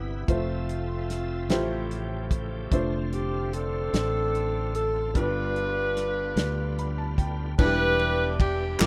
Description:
slow gospel; 49 BPM (dotted quarters); 6/8; straight; A4 = 439 Hz
warm saxophone section; melody; 0.0-8.9 s; A3 to B4; -30 LUFS; equal
clear upright piano; accompaniment; 0.0-8.9 s; G2 to B5; -35 LUFS; equal
bright tonewheel organ; sustained chords; 0.0-8.9 s; C3 to E5; -42 LUFS; equal; slow rotary speaker, overdrive, chorus vibrato
fingered electric bass; bass; 0.0-8.9 s; E1 to D2; -33 LUFS; equal
warm soul drum kit; drums; 0.3-8.9 s; crash cymbal, hi-hat, kick drum, ride cymbal, snare drum; -28 LUFS; equal
group handclap; percussion; 8.8-8.9 s; -28 LUFS; equal
light reverb, small room reverb; rough home demo mix; -27 LUFS; mono
0.0-7.6 A section; 7.6-8.9 B section
upright piano fill 6.4-7.6
0.3 Fmaj7; 1.5 A7alt; 2.7 Dm7/F; 5.2 G7; 7.6 Em7

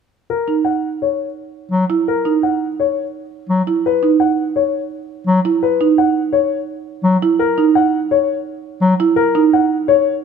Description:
classical, minimalist pattern music; 169 BPM; 5/4; straight; F# mixolydian; A4 = 440 Hz
dark grand piano; melody; 0.3-10.1 s; A#4 to F#5; -17 LUFS; left 9 dB
marimba with soft mallets; arpeggios; 0.5-9.6 s; D#4 to E4; -17 LUFS; right 8 dB
warm bass clarinet; accompaniment; 1.7-8.9 s; F#3; -16 LUFS; left 2 dB
light reverb; close, detailed microphones; -14 LUFS; side -6 dB against mid
0.3-10.2 A section
0.3 F#7(no3)

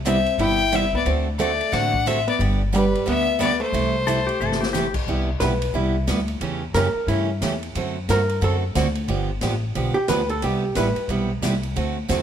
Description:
country, western swing; 180 BPM; 4/4; swing 61% on 8ths; C major; A4 = 439 Hz
upright bass; bass; 0.0-12.2 s; G1 to G2; -25 LUFS; left 1 dB
clear fiddle; melody; 0.1-4.7 s; B4 to G5; -23 LUFS; left 5 dB
archtop guitar, miked and amplified; second line; 0.1-11.1 s; G3 to B4; -25 LUFS; right 1 dB
picked steel-string acoustic guitar; accompaniment; 0.1-12.2 s; C3 to A4; -25 LUFS; right 4 dB
swinging big-band drum kit; drums; 0.1-12.2 s; crash cymbal, hi-hat, kick drum, ride cymbal, rim click, snare drum, toms; -31 LUFS; left 1 dB
clean lap steel guitar; second line; 4.1-4.9 s; G4 to A4; -26 LUFS; left 7 dB
light reverb; -19 LUFS; side -9 dB against mid
0.0-5.1 A section; 5.1-12.2 B section
drum fill 4.4-4.7; hollow-body jazz guitar solo 5.1-12.2
0.0 Cmaj7; 1.1 D7; 2.4 G; 3.7 C6; 5.1 Cmaj7; 6.4 A7; 7.7 D7; 9.1 G7; 10.4 Cmaj7

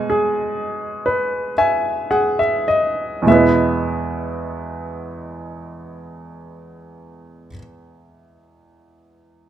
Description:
classical, lyrical solo piano; 49-64 BPM; 4/4; rubato; E major; A4 = 444 Hz
bright baby grand piano; solo; 0.0-9.5 s; E2 to G#5; -18 LUFS; right 1 dB
light reverb; close, detailed microphones; -17 LUFS; side -10 dB against mid
0.0-3.3 A section; 3.3-7.9 B section
slowing down 0.0-3.3; grand piano fill 1.0-3.3
0.0 E/B; 3.3 E

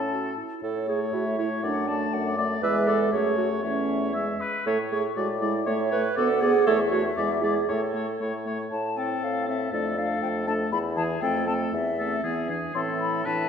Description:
quick classical-period movement for wind quintet; 119 BPM; 2/4; straight; A major, A minor from 8.7 s; A4 = 440 Hz
mellow hollow silver concert flute; melody; 0.0-13.5 s; C#5 to C6; -31 LUFS; left 4 dB
clear oboe; second line; 0.0-13.5 s; G#4 to E5; -31 LUFS; left 3 dB
mellow French horn; accompaniment; 0.0-13.5 s; E3 to C#4; -31 LUFS; left 2 dB
mellow clarinet; accompaniment; 0.0-13.5 s; B3 to C#5; -28 LUFS; right 6 dB
warm bassoon; bass; 0.0-13.5 s; D2 to A2; -30 LUFS; right 1 dB
wet scoring stage reverb, RT60 1.4 s; dark, warm production; -23 LUFS; side -7 dB against mid
0.6-8.7 A section; 8.7-13.5 A section
0.0 A; 1.6 D/F#; 2.6 E; 3.1 F#m; 3.6 A/E; 4.1 E; 4.7 A; 5.2 E7/A; 5.7 A; 6.2 Bm/D; 6.7 A/E; 7.2 E7; 7.7 A; 8.7 Am; 9.7 Dm/F; 10.7 E; 11.2 F; 11.7 Am/E; 12.2 E; 12.8 Am

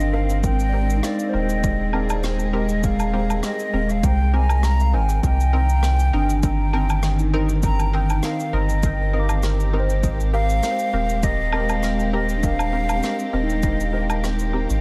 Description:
ambient dub; 100 BPM; 4/4; swing 54% on 16ths; A4 = 440 Hz
bright wooden flute; melody; 0.0-14.5 s; D5 to Bb5; -29 LUFS; equal; dub echo
dark chamber string section; sustained chords; 0.0-14.8 s; Eb3 to Bb4; -30 LUFS; equal
soft synth bell; arpeggios; 0.0-14.8 s; C4 to D6; -34 LUFS; equal; chorus, phaser, dub echo
soft dub sub bass; bass; 0.0-14.8 s; Eb1 to C2; -23 LUFS; equal
cabasa, rim click and woodblock; drums; 0.0-14.8 s; -33 LUFS; equal; dub echo
filtered dub chord stab; stabs; 0.1-14.7 s; C4 to Bb4; -34 LUFS; equal; analog chorus, dub echo
electronic kick drum; drums; 0.4-13.8 s; -26 LUFS; equal; overdrive
light reverb, small room ambience; -21 LUFS; mono
0.0-14.8 A section
0.4 Abmaj9; 5.2 Cm7; 10.0 Abmaj9

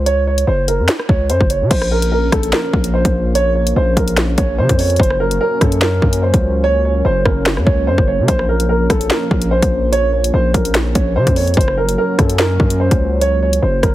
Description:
hip hop, drill; 146 BPM; 4/4; half-time; Bb minor; A4 = 440 Hz
dark concert grand piano; melody; 0.0-13.9 s; A4 to Db5; -18 LUFS; right 2 dB
hard-hitting 808-style bass; bass; 0.0-13.9 s; Gb1 to Db3; -17 LUFS; equal
drill drum kit; drums; 0.1-13.9 s; crash cymbal, finger snaps, hi-hat, kick drum, rim click, snare drum; -16 LUFS; equal
dark analog pad; sustained chords; 1.7-13.9 s; F3 to Db4; -22 LUFS; equal; chorus
little or no reverb; heavily compressed radio sound, multiband compression; -12 LUFS; side -14 dB against mid
0.0-1.7 A section; 1.7-13.9 B section
hi-hats muted 6.6-8.3
0.0 Gb5; 1.7 Bbm; 5.0 Gb; 8.3 Bbm; 11.6 Gb

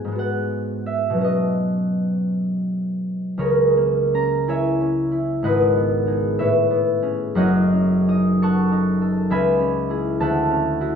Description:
classical, solo harp piece; 51-68 BPM (dotted quarters); 6/8; rubato; C# minor; A4 = 440 Hz
concert harp; solo; 0.0-11.0 s; F#1 to D#6; -18 LUFS; equal
wet stone room reverb, RT60 0.9 s; dark, warm production; -18 LUFS; side -7 dB against mid
0.0-3.4 A section; 3.4-11.0 B section
0.0 G#m7; 1.2 Badd9; 3.4 C#m6; 5.4 G#m7; 6.4 Amaj9; 7.4 F#m6; 9.3 C#m7; 10.2 Dmaj9

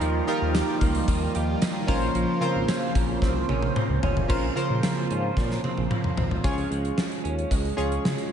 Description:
1980s-style pop; 112 BPM; 4/4; straight; Bb dorian; A4 = 440 Hz
chorused retro synth keys; accompaniment; 0.0-8.3 s; Db3 to Db5; -29 LUFS; equal
phased analog pad; sustained chords; 0.0-6.4 s; Db3 to C5; -29 LUFS; right 1 dB; phaser, chorus
direct-recorded clean electric guitar; riff; 0.0-8.3 s; F3 to G4; -32 LUFS; right 6 dB; ensemble chorus, diffuse ambient delay
smooth synth bass; bass; 0.0-8.2 s; F1 to Db3; -29 LUFS; equal
gated 80s drum kit; drums; 0.0-8.3 s; crash cymbal, hi-hat, kick drum, snare drum, tambourine, toms; -27 LUFS; equal
moderate plate reverb, RT60 2.1 s; dreamy mix soaked in reverb, nothing above 10.8 kHz; -22 LUFS; side -8 dB against mid
0.0-4.3 A section; 4.3-6.4 B section; 6.4-8.3 C section
drum fill 3.2-4.3, 5.4-6.4
0.0 Ebadd9; 1.9 Bbmadd9; 6.4 Db

